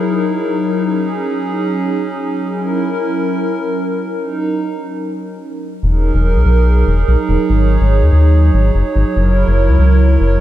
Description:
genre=IDM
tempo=144 BPM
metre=4/4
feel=straight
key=E lydian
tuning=A4 = 439 Hz
part: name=hollow soft pad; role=sustained chords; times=0.0-10.4 s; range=F#3 to C#5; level=-16 LUFS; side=right 1 dB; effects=chorus
part: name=rubbery square bass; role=bass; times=5.8-10.4 s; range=E1 to D#2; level=-11 LUFS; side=equal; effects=none
room=light reverb, digital ambience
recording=none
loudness=-12 LUFS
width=side -13 dB against mid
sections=0.0-5.8 A section; 5.8-10.4 B section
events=stop 5.4-5.8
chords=0.0 Emaj9#11; 0.8 G#7sus4; 2.5 F#7; 4.2 D#m7/F#; 5.8 Emaj9#11; 7.5 G#7sus4; 9.2 F#7

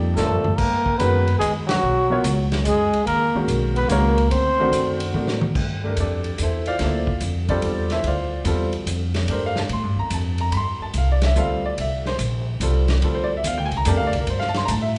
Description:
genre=modal jazz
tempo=145 BPM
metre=3/4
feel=swing 67% on 8ths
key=G dorian from 5.6 s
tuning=A4 = 441 Hz
part: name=clear upright piano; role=accompaniment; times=0.0-14.9 s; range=D3 to C6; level=-27 LUFS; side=equal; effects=none
part: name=upright bass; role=bass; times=0.0-15.0 s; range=Bb1 to A2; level=-25 LUFS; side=equal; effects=none
part: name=bright trombone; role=second line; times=0.1-5.1 s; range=Gb3 to C4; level=-28 LUFS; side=equal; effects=none
part: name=breathy trumpet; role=melody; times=0.2-5.1 s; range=Gb4 to C5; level=-25 LUFS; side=equal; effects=none
part: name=vintage drum kit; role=drums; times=0.2-15.0 s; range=crash cymbal, hi-hat, kick drum, ride cymbal, snare drum, toms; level=-31 LUFS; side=equal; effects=none
room=wet recital hall reverb, RT60 1.4 s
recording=recorded in a church or concert hall, nothing above 10.8 kHz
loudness=-21 LUFS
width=mono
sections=0.0-5.6 A section; 5.6-15.0 B section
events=drum fill 0.2-0.6, 5.1-5.6; band accent 1.6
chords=0.0 Cm11; 0.6 Abm11; 4.3 D7b9; 5.6 G13sus4

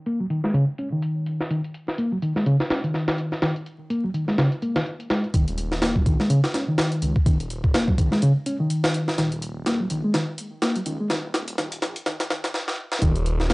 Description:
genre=breakbeat, breaks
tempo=125 BPM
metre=4/4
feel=swing 57% on 16ths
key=Eb minor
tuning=A4 = 439 Hz
part: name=reed electric piano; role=riff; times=0.1-13.5 s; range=Db3 to Db4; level=-23 LUFS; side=equal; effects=low-pass filter, analog delay
part: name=breakbeat sampler-style drum kit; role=drums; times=0.1-13.5 s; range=hi-hat, kick drum, snare drum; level=-24 LUFS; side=equal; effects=low-pass filter on hats, studio reverb, low-pass filter on snare, low-pass filter on kick
part: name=phased detuned saw bass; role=bass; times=5.3-13.5 s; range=Eb1 to Db2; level=-29 LUFS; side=equal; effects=phaser
room=moderate small room reverb, RT60 0.5 s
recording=dry, gritty hardware recording, vinyl crackle, high-pass filter, low-pass filter, nothing above 10.4 kHz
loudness=-21 LUFS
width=side -25 dB against mid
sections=0.0-5.3 A section; 5.3-13.0 B section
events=filter sweep 0.0-5.3, 5.3-13.0; build-up 5.3-13.0; filter sweep on reed electric piano 5.3-13.0; drum fill 9.2-12.5, 12.5-13.0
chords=0.0 Eb7(no3); 5.3 Eb5; 13.0 N.C.

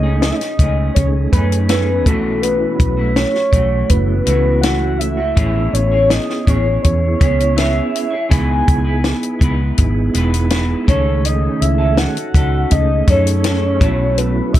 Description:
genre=indie pop, bedroom pop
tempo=82 BPM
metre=4/4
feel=straight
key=F# dorian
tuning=A4 = 440 Hz
part: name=soft octave-layered synth lead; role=melody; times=0.0-14.6 s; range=A4 to G#5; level=-19 LUFS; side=equal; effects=phaser, lush chorus, analog delay
part: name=electric guitar through a small old amp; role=accompaniment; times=0.0-14.6 s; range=B2 to C#5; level=-23 LUFS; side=left 2 dB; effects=wide subtle chorus, warbly pitch drift
part: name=mellow tonewheel organ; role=accompaniment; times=0.0-14.6 s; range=D#3 to G#4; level=-22 LUFS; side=right 4 dB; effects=chorus vibrato, fast rotary speaker, cassette tape
part: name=vintage muted fingered electric bass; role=bass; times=0.0-14.6 s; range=E1 to F#2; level=-17 LUFS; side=equal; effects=none
part: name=compact cocktail drum kit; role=drums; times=0.2-14.6 s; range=hi-hat, kick drum, snare drum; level=-16 LUFS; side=equal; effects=none
room=moderate small room reverb, RT60 0.5 s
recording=dark, warm production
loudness=-13 LUFS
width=side -13 dB against mid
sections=0.0-14.6 A section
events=none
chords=0.0 F#m69/C#; 2.1 B7sus4; 5.4 Amaj9; 8.3 C#m7; 10.9 F#m69/C#; 13.8 B7sus4

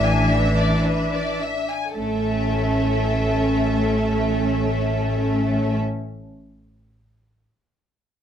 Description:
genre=classical, slow romantic movement for string orchestra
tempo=59 BPM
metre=4/4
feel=rubato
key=A major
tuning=A4 = 437 Hz
part: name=warm symphonic violin section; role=melody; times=0.0-5.8 s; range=E5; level=-30 LUFS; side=right 1 dB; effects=none
part: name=warm symphonic violin section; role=second line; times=0.0-5.8 s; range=A4 to G#5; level=-27 LUFS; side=left 3 dB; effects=none
part: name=dark symphonic viola section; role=accompaniment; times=0.0-5.8 s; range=C#4 to D4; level=-26 LUFS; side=right 1 dB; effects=none
part: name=clear symphonic cello section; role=bass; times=0.0-5.8 s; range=E3 to A3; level=-25 LUFS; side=right 1 dB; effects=none
part: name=rich symphonic double bass section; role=bass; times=0.0-5.8 s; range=A1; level=-24 LUFS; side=equal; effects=none
room=light reverb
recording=close, detailed microphones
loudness=-19 LUFS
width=side -9 dB against mid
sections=0.0-2.0 A section; 2.0-6.0 B section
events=slowing down 0.0-2.0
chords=0.0 E7/A; 2.0 A

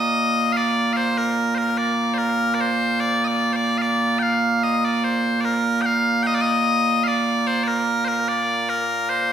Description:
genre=scottish traditional, Scottish pipe music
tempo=74 BPM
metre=2/4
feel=straight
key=Bb major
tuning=A4 = 440 Hz
part: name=loud bright bagpipes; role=solo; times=0.0-9.3 s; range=Bb2 to G5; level=-18 LUFS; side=right 1 dB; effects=none
room=wet recital hall reverb, RT60 1.2 s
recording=recorded in a church or concert hall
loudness=-18 LUFS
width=side -9 dB against mid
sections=0.0-5.9 A section; 5.9-9.3 A section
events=none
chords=none

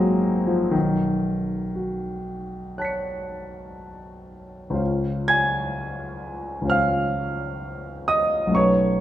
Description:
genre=classical, impressionist solo piano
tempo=58-69 BPM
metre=4/4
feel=rubato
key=Db major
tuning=A4 = 440 Hz
part: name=warm grand piano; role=solo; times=0.0-9.0 s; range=Ab1 to Db7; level=-22 LUFS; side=equal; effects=none
room=wet recital hall reverb, RT60 1.5 s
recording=dark, warm production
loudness=-21 LUFS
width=side -12 dB against mid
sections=0.0-4.8 A section; 4.8-9.0 B section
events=none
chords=0.0 Ab7; 0.7 Cb9; 4.8 Dbmaj7

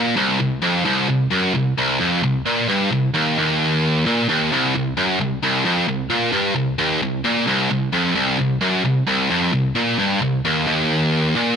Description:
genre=metal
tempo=131 BPM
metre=4/4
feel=straight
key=C minor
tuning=A4 = 440 Hz
part: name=high-gain distorted guitar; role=solo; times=0.0-11.6 s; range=C2 to Bb2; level=-17 LUFS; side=equal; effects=distortion
room=little or no reverb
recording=none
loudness=-17 LUFS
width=side -7 dB against mid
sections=0.0-11.6 A section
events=none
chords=none

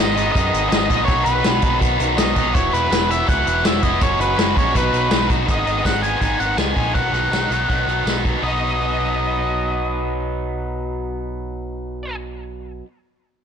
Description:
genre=indie rock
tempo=163 BPM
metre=4/4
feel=straight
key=B major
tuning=A4 = 439 Hz
part: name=octave-fuzz lead guitar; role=melody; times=0.0-12.2 s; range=B4 to G#5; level=-22 LUFS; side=equal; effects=distortion
part: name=biting overdriven guitar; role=riff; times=0.0-12.9 s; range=G#2 to F#4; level=-22 LUFS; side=equal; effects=none
part: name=picked electric bass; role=bass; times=0.0-12.8 s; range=E1 to F#2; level=-25 LUFS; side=right 1 dB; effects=none
part: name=unplugged drum kit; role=drums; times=0.2-8.3 s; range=hi-hat, kick drum, snare drum, tambourine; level=-21 LUFS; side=equal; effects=none
room=small room ambience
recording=blown-out, overdriven recording, overdrive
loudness=-16 LUFS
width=side -7 dB against mid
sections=0.0-5.5 A section; 5.5-8.4 B section; 8.4-11.4 C section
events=none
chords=0.0 G#m; 1.1 B; 2.5 Esus2; 4.0 F#sus2; 4.7 B; 5.5 G#m; 6.9 B

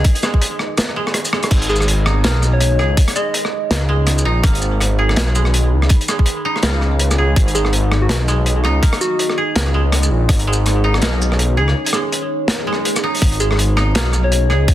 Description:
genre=half-time drum and bass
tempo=164 BPM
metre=4/4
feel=swing 59% on 16ths, half-time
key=G# minor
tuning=A4 = 437 Hz
part: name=deep dark ambient pad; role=sustained chords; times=0.0-14.7 s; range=D#4 to B5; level=-26 LUFS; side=equal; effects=chorus, built-in reverb, sidechain pumping
part: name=koto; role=arpeggios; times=0.0-14.7 s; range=G#3 to G#4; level=-23 LUFS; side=right 3 dB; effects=digital delay
part: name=dark detuned saw bass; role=bass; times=0.0-14.7 s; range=G#1 to C#2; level=-16 LUFS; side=equal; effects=none
part: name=crunchy breakbeat drum kit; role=drums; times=0.0-14.7 s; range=crash cymbal, hi-hat, rim click, shaker, snare drum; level=-20 LUFS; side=equal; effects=none
part: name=electronic kick drum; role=drums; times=0.0-10.4, 13.2-14.7 s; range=none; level=-13 LUFS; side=equal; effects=none
part: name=flickering grainy texture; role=texture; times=0.1-1.5 s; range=D#5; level=-34 LUFS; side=right 3 dB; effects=none
part: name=soft struck synth lead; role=melody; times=1.7-3.4, 7.5-9.4, 13.4-14.7 s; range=F#4 to D#5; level=-23 LUFS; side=left 2 dB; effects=chorus, digital delay
part: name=swell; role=sound effects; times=12.6-13.2 s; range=none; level=-25 LUFS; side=left 4 dB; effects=none
room=small room ambience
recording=dense, heavily limited modern master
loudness=-14 LUFS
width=side -13 dB against mid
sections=0.0-1.5 A section; 1.5-14.7 A section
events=drop 0.0-1.5, 1.5-14.7; drum fill 0.8-1.5; break 11.8-13.2; swell 12.6-13.2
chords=0.0 G#5; 1.5 G#m

